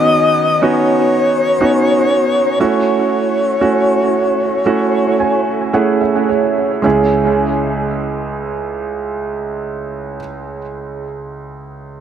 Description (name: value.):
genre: pop.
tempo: 54-62 BPM.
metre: 4/4.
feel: straight.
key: C# minor.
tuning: A4 = 440 Hz.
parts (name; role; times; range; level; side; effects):
breathy alto saxophone; melody; 0.0-5.7 s; C#5 to D#5; -15 LUFS; left 2 dB; tape echo.
clear concert grand piano; accompaniment; 0.0-12.0 s; C#2 to G#5; -15 LUFS; right 3 dB; tape echo.
room: wet plate reverb, RT60 2.6 s.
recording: echo-heavy mix.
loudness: -13 LUFS.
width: side -9 dB against mid.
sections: 0.0-6.8 A section; 6.8-11.3 B section.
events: slowing down 0.0-6.8; grand piano fill 4.7-6.8.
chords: 0.0 Badd9/D#; 2.6 F#m7; 6.8 C#m.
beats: 0.61 1.60 | 2.59 3.61 4.66 5.74 | 6.85 7.95 9.05 10.15.